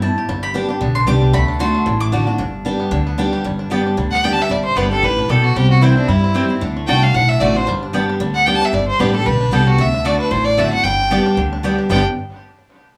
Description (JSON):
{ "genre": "bluegrass", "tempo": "227 BPM", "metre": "4/4", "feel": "swing 55% on 8ths", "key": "G major", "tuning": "A4 = 438 Hz", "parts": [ { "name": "bluegrass banjo", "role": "melody", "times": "0.0-12.1 s", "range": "D3 to G4", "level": "-32 LUFS", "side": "equal", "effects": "tape echo" }, { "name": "picked steel-string acoustic guitar", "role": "accompaniment", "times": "0.0-12.0 s", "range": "G2 to G4", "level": "-21 LUFS", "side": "equal", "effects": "none" }, { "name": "mandolin", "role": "stabs", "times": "0.0-12.0 s", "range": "A3 to D6", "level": "-26 LUFS", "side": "equal", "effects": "none" }, { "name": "upright bass", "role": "bass", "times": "0.0-12.0 s", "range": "G1 to G2", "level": "-21 LUFS", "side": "equal", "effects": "none" }, { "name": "clear fiddle", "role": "melody", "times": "4.1-12.0 s", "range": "D4 to A5", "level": "-20 LUFS", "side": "equal", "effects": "none" } ], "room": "wet small room reverb, RT60 0.6 s", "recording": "rough home demo mix, small room reverb", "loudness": "-16 LUFS", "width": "mono", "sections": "0.0-3.5 A section; 3.5-11.9 B section; 11.9-13.0 C section", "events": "mandolin solo 0.0-3.5", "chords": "0.3 G; 1.3 D; 2.4 G; 5.6 C; 6.6 D; 7.7 G; 9.8 D; 10.8 G", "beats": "0.03 | 0.29 0.55 0.81 1.08 | 1.34 1.61 1.87 2.13 | 2.40 2.66 2.92 3.19 | 3.45 3.71 3.98 4.24 | 4.51 4.77 5.03 5.30 | 5.56 5.83 6.09 6.35 | 6.62 6.88 7.15 7.41 | 7.67 7.94 8.20 8.47 | 8.73 9.00 9.26 9.52 | 9.79 10.05 10.32 10.58 | 10.85 11.11 11.37 11.64 | 11.90" }